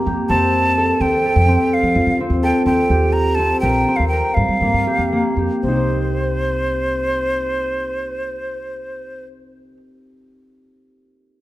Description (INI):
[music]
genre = contemporary instrumental, chamber music in an uneven meter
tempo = 231-254 BPM (eighths)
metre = 11/8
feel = straight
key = C dorian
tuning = A4 = 440 Hz
[part]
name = concert harp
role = arpeggios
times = 0.0-9.9 s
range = Bb3 to C5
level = -19 LUFS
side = equal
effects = none
[part]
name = upright bass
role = bass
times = 0.1-9.8 s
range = Bb1 to G3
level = -21 LUFS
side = equal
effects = none
[part]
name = breathy bright jazz flute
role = melody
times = 0.3-9.2 s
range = C5 to Bb5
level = -20 LUFS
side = right 1 dB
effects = none
[sound]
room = light reverb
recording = close, detailed microphones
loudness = -15 LUFS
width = side -16 dB against mid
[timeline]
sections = 0.0-5.6 A section; 5.6-8.5 B section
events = slowing down 1.7-5.6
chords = 0.3 F7; 2.9 Cm7/Eb; 4.4 Gm7; 5.6 Cm